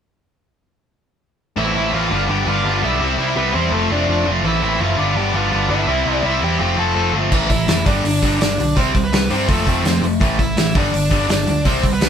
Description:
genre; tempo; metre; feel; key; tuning
punk rock; 167 BPM; 4/4; straight; unclear; A4 = 440 Hz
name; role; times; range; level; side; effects
high-gain lead guitar; melody; 1.6-12.1 s; A3 to A5; -22 LUFS; equal; distortion
distorted electric guitar; riff; 1.6-12.1 s; G2 to F4; -23 LUFS; left 7 dB; overdrive
distorted electric guitar; riff; 1.6-12.1 s; G2 to F4; -20 LUFS; right 4 dB; distortion
overdriven picked electric bass; bass; 1.6-12.1 s; F1 to G2; -22 LUFS; left 1 dB; none
loose indie drum kit; drums; 7.3-12.1 s; crash cymbal, hi-hat, kick drum, snare drum; -18 LUFS; equal; none
room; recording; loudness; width
moderate studio reverb, RT60 0.6 s; band playing live in one room; -15 LUFS; side -8 dB against mid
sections
1.6-7.3 A section; 7.3-12.1 B section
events
none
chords
1.6 Am; 2.1 G; 3.0 C; 3.7 F; 4.4 Am; 5.0 G; 5.9 C; 6.6 F; 7.3 A5; 7.9 G; 8.8 C5; 9.5 F; 10.2 A5; 10.7 G5

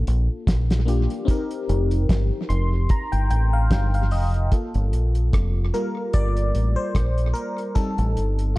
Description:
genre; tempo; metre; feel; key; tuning
lovers rock reggae; 74 BPM; 4/4; swing 56% on 16ths; G minor; A4 = 441 Hz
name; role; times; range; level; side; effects
FM electric piano; accompaniment; 0.0-8.6 s; G3 to C6; -27 LUFS; left 2 dB; chorus, phaser
deep dub fingered electric bass; bass; 0.0-8.5 s; F1 to Bb1; -20 LUFS; equal; none
cloth-damped thuddy drum kit; drums; 0.1-8.6 s; hi-hat, kick drum, rim click, snare drum; -22 LUFS; equal; tape echo
room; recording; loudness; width
studio reverb; dark, warm production; -20 LUFS; side -19 dB against mid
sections
0.0-4.5 A section; 4.5-8.6 B section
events
FM electric piano fill 2.1-4.5; FM electric piano solo 4.5-8.6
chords
0.0 Gm7; 1.3 F9sus4; 4.5 Gm7; 7.8 Am7b5

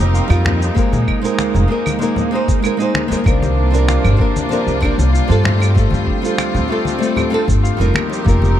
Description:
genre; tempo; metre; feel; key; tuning
sunset chillout; 96 BPM; 4/4; straight; C minor; A4 = 440 Hz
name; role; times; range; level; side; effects
rich chamber string section; sustained chords; 0.0-8.6 s; C3 to Bb4; -23 LUFS; right 2 dB; none
Celtic harp; arpeggios; 0.0-8.6 s; A3 to Bb4; -23 LUFS; left 7 dB; ping-pong delay
upright bass; bass; 0.0-8.6 s; F1 to Bb2; -15 LUFS; equal; none
bongos and congas; percussion; 0.0-8.5 s; none; -25 LUFS; left 2 dB; none
electronic shaker, claves and finger snaps; drums; 0.1-8.6 s; none; -25 LUFS; right 2 dB; none
nylon-string guitar; accompaniment; 0.3-8.6 s; F3 to C5; -20 LUFS; moving between left 3 dB and right 7 dB; auto-pan, ping-pong delay
electronic kick drum; drums; 0.8-8.4 s; none; -17 LUFS; equal; none
room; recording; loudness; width
light reverb; dark, warm production; -13 LUFS; side -11 dB against mid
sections
0.0-8.6 A section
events
none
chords
0.0 F9sus4; 0.8 Bb9sus4; 3.3 C9sus4; 5.5 G9sus4; 8.0 F9sus4

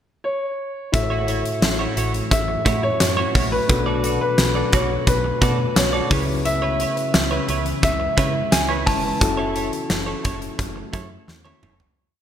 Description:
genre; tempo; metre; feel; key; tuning
1980s-style pop; 87 BPM; 4/4; straight; A major; A4 = 436 Hz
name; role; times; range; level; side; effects
warm concert grand piano; melody; 0.2-11.2 s; B4 to A5; -24 LUFS; left 1 dB; digital delay
tine electric piano; accompaniment; 0.9-12.0 s; A2 to C#5; -27 LUFS; left 3 dB; medium stereo tremolo
ethereal airy pad; sustained chords; 1.9-11.9 s; C#3 to F#4; -32 LUFS; right 1 dB; ensemble chorus, built-in reverb
direct-recorded clean electric guitar; riff; 0.9-11.8 s; E4 to D5; -28 LUFS; right 4 dB; lush chorus, digital delay
solid FM bass; bass; 0.9-11.9 s; F1 to C#3; -26 LUFS; right 1 dB; none
huge arena drum kit; drums; 0.9-12.0 s; hi-hat, kick drum, snare drum, toms; -22 LUFS; equal; gated reverb
room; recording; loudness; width
moderate plate reverb, RT60 2.5 s; bright 1980s-style digital production; -18 LUFS; side -9 dB against mid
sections
0.0-0.9 pickup bar; 0.9-12.0 chorus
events
fade-out 9.2-12.0; drum fill 11.3-12.0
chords
0.0 N.C.; 0.9 A6; 3.7 Bm7; 6.1 C#m7; 9.2 F#m7

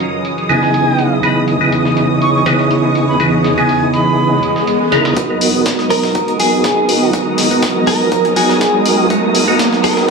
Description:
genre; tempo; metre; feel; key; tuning
deep house; 122 BPM; 4/4; swing 53% on 16ths; G# minor; A4 = 440 Hz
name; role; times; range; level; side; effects
warm analog pad; sustained chords; 0.0-10.1 s; C#3 to D#5; -21 LUFS; equal; chorus, sidechain pumping
breakbeat sampler-style drum kit; drums; 0.0-10.1 s; hi-hat, snare drum; -24 LUFS; equal; sidechain pumping on hats, high-pass filter on hats, low-pass filter on hats, high-pass filter on snare, low-pass filter on snare, high-pass filter on room, low-pass filter on room
granular cloud pad; texture; 0.0-10.1 s; E3 to A#5; -22 LUFS; equal; built-in reverb, sidechain pumping
soft string machine; texture; 0.0-10.1 s; D#6; -23 LUFS; right 1 dB; phaser, ensemble chorus, sidechain pumping
breathy bright concert flute; melody; 0.5-4.4 s; G#5 to C#6; -20 LUFS; right 1 dB; vintage 12-bit sampler grit, dub echo
percussive tonewheel organ; stabs; 0.5-10.1 s; C#3 to A#4; -15 LUFS; right 2 dB; chorus vibrato, fast rotary speaker, sidechain pumping, low-pass filter, dub echo
swell and riser; sound effects; 4.4-10.1 s; none; -20 LUFS; equal; none
electronic kick drum; drums; 5.2-9.7 s; none; -22 LUFS; right 1 dB; high-pass filter on kick, high-pass filter on room
electronic hi-hat; drums; 5.4-9.9 s; none; -20 LUFS; left 4 dB; none
direct-recorded clean electric guitar; melody; 5.9-10.1 s; G#4 to A#4; -17 LUFS; equal; analog chorus, dub echo
room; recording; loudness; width
light reverb, digital ambience; none; -11 LUFS; side -4 dB against mid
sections
0.0-5.2 A section; 5.2-10.1 B section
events
swell 4.4-5.2; build-up 5.2-10.1; riser 5.2-10.1; filter sweep on tonewheel organ 5.2-10.1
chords
0.0 C#m9; 5.2 G#m9

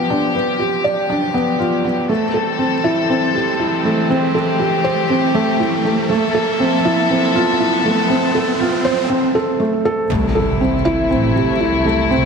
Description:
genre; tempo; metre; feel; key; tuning
piano and strings electronica; 120 BPM; 4/4; straight; C major; A4 = 440 Hz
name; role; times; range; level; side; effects
warm chamber string section; sustained chords; 0.0-12.3 s; C3 to E5; -20 LUFS; left 4 dB; none
felt-muted upright piano; riff; 0.0-12.3 s; A3 to D5; -17 LUFS; right 2 dB; ping-pong delay
riser and impact; sound effects; 0.0-12.1 s; none; -25 LUFS; right 1 dB; none
clear studio double bass section; bass; 10.1-12.3 s; A1 to C2; -21 LUFS; left 1 dB; none
room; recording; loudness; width
wet concert hall reverb, RT60 2.0 s, small room reverb; none; -14 LUFS; side -5 dB against mid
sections
0.0-10.1 A section; 10.1-12.3 B section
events
build-up 0.0-10.1; riser 0.0-9.1; drop 10.1-12.3; impact 10.1-12.1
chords
0.0 G7; 2.1 C6; 6.1 Fmaj7; 10.1 C6

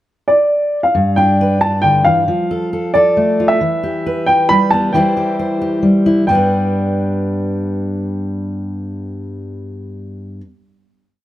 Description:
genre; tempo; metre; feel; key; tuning
indie folk with a building arrangement; 136 BPM; 3/4; straight; G mixolydian; A4 = 440 Hz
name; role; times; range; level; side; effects
warm upright piano; melody; 0.3-10.4 s; D5 to B5; -14 LUFS; equal; none
fingerpicked steel-string acoustic guitar; accompaniment; 0.9-10.4 s; G2 to C5; -16 LUFS; equal; none
room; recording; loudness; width
light reverb; none; -13 LUFS; side -14 dB against mid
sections
0.0-0.9 pickup bar; 0.9-6.3 verse; 6.3-8.9 final chord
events
none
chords
0.0 N.C.; 0.9 G; 2.3 F; 3.6 Em; 4.9 C/E; 6.3 G

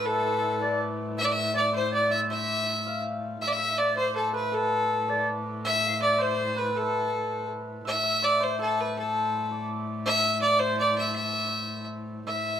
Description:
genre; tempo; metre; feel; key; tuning
medieval dance; 108 BPM (dotted quarters); 6/8; straight; A minor; A4 = 435 Hz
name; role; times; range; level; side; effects
clear fiddle; melody; 0.0-12.6 s; A4 to E5; -26 LUFS; left 1 dB; none
hammered dulcimer; second line; 0.0-12.6 s; A4 to F5; -32 LUFS; right 2 dB; none
reedy alto recorder; second line; 0.0-7.5, 12.3-12.6 s; A4 to F5; -31 LUFS; equal; none
dark viola da gamba; drone; 0.0-12.6 s; A2; -35 LUFS; left 2 dB; none
room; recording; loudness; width
wet studio reverb, RT60 0.6 s; band playing live in one room; -24 LUFS; side -9 dB against mid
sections
0.0-7.9 A section; 7.9-12.6 A section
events
none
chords
none

